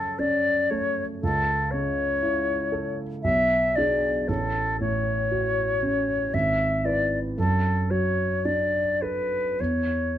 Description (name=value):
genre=classical, romantic duo for flute and grand piano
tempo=48-62 BPM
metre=3/4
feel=rubato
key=unclear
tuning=A4 = 442 Hz
part: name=silver concert flute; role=melody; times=0.0-10.2 s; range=A4 to E5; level=-24 LUFS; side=left 2 dB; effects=none
part: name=dark concert grand piano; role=accompaniment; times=0.0-10.2 s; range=G#1 to B4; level=-26 LUFS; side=right 2 dB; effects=none
room=light reverb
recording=dark, warm production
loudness=-22 LUFS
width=side -11 dB against mid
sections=0.0-10.2 A section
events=none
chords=0.0 F#m; 1.2 A/C#; 3.2 G#dim/B; 4.3 F#m/A; 6.3 E/G#; 7.4 D/F#; 9.6 N.C.